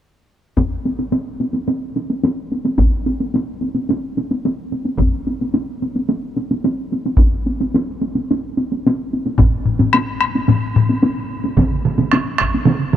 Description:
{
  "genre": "japanese traditional, taiko drum ensemble",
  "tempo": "109 BPM",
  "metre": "4/4",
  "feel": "straight",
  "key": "none",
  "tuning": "none",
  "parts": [
    { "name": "taiko ensemble", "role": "percussion", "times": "0.6-12.8 s", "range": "none", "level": "-19 LUFS", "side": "equal", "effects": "none" },
    { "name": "taiko ensemble", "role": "percussion", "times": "0.6-12.5 s", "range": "none", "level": "-18 LUFS", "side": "equal", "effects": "none" },
    { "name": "solo taiko drums", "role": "percussion", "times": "9.4-10.9 s", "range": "none", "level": "-18 LUFS", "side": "left 4 dB", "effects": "none" },
    { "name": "solo taiko drums", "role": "percussion", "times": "11.6-13.0 s", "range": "none", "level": "-16 LUFS", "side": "right 6 dB", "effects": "none" }
  ],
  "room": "moderate huge ambient reverb, RT60 8.5 s",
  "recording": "dark, warm production",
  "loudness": "-16 LUFS",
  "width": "side -11 dB against mid",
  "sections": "0.6-9.4 A section; 9.4-13.0 B section",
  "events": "none",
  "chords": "none",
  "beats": "| 0.57 1.12 1.68 2.23 | 2.78 3.33 3.88 4.43 | 4.98 5.53 6.08 6.63 | 7.18 7.73 8.28 8.83 | 9.38 9.93 10.48 11.03 | 11.58 12.13 12.68"
}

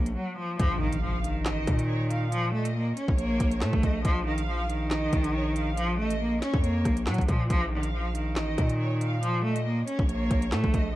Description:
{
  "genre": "hip hop, drill",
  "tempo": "139 BPM",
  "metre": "4/4",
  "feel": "half-time",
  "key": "Bb harmonic minor",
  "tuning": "A4 = 440 Hz",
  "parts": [
    { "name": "bright cello", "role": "melody", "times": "0.0-10.9 s", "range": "Eb3 to Db4", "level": "-29 LUFS", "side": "equal", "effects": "none" },
    { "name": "distorted 808-style bass", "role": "bass", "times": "0.0-10.9 s", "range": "A1 to Bb2", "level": "-29 LUFS", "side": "equal", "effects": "distortion" },
    { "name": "drill drum kit", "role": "drums", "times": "0.1-10.8 s", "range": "handclaps, hi-hat, kick drum, rim click, snare drum", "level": "-28 LUFS", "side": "equal", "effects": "none" },
    { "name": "impact", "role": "sound effects", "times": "0.6-2.3 s", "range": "none", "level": "-36 LUFS", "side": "equal", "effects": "none" },
    { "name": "warm studio violin section", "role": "second line", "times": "0.8-10.9 s", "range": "Db5 to F5", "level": "-37 LUFS", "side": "right 2 dB", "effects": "none" }
  ],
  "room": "digital ambience",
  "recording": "dark, warm production",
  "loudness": "-24 LUFS",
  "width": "side -15 dB against mid",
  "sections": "0.6-11.0 A section",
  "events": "break 0.2-0.6; impact 0.6-2.3",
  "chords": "0.0 Bb5; 0.6 Bbm",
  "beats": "0.16 | 0.59 1.03 1.46 1.89 | 2.32 2.75 3.19 3.62 | 4.05 4.48 4.91 5.34 | 5.78 6.21 6.64 7.07 | 7.50 7.93 8.37 8.80 | 9.23 9.66 10.09 10.52"
}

